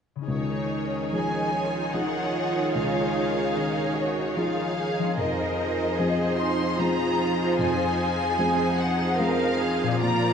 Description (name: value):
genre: cinematic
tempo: 74 BPM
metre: 3/4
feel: rubato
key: Db major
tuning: A4 = 441 Hz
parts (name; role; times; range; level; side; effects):
- concert harp; arpeggios; 0.2-10.3 s; Bb2 to D5; -34 LUFS; left 6 dB; none
- warm symphonic violin section; melody; 0.3-10.3 s; Db5 to C6; -29 LUFS; left 2 dB; none
- rich symphonic violin section; second line; 0.3-10.3 s; Ab4 to D5; -31 LUFS; left 1 dB; none
- dark grand piano; accompaniment; 0.3-10.3 s; Db2 to Ab4; -28 LUFS; left 1 dB; none
- rich symphonic viola section; accompaniment; 0.3-10.3 s; Eb3 to F4; -30 LUFS; right 2 dB; none
- warm symphonic cello section; bass; 1.1-10.3 s; Eb4 to Bb4; -30 LUFS; right 4 dB; none
room: wet scoring stage reverb, RT60 1.6 s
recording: nothing above 10.9 kHz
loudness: -23 LUFS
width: side -7 dB against mid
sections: 0.3-10.3 A section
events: none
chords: 0.3 Dbadd9; 5.2 Fm7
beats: | 0.28 1.12 1.94 | 2.75 3.56 4.36 | 5.17 5.98 6.78 | 7.58 8.38 9.18 | 10.01